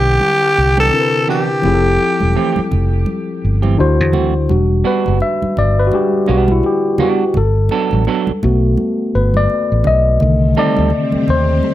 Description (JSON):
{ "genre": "R&B, neo-soul", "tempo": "84 BPM", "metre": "4/4", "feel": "swing 59% on 16ths", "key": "unclear", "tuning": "A4 = 445 Hz", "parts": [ { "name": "growling tenor saxophone", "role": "melody", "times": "0.0-2.7 s", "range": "G4 to A4", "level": "-15 LUFS", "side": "equal", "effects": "tape echo" }, { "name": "tine electric piano", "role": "accompaniment", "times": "0.0-11.7 s", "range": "C3 to E5", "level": "-16 LUFS", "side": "left 2 dB", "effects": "none" }, { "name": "fingered electric bass", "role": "bass", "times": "0.0-11.6 s", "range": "E1 to E2", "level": "-15 LUFS", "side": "equal", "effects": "none" }, { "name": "congas", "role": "percussion", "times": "0.2-11.7 s", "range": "none", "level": "-24 LUFS", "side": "right 2 dB", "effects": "none" }, { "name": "semi-hollow electric guitar", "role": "second line", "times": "0.8-11.7 s", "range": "E3 to A4", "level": "-19 LUFS", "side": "right 8 dB", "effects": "none" }, { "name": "string machine, violins", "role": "sustained chords", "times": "10.2-11.7 s", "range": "C3 to G4", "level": "-22 LUFS", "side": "left 2 dB", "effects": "phaser, ensemble chorus" } ], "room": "moderate studio reverb, RT60 0.7 s", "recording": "none", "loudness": "-12 LUFS", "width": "side -14 dB against mid", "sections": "0.0-4.5 A section; 4.5-11.7 B section", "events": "tine electric piano solo 4.5-11.7", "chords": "0.0 Cmaj9; 1.6 Fmaj9; 3.8 D9; 4.5 Em9; 7.3 Gmaj9; 10.2 Cm6" }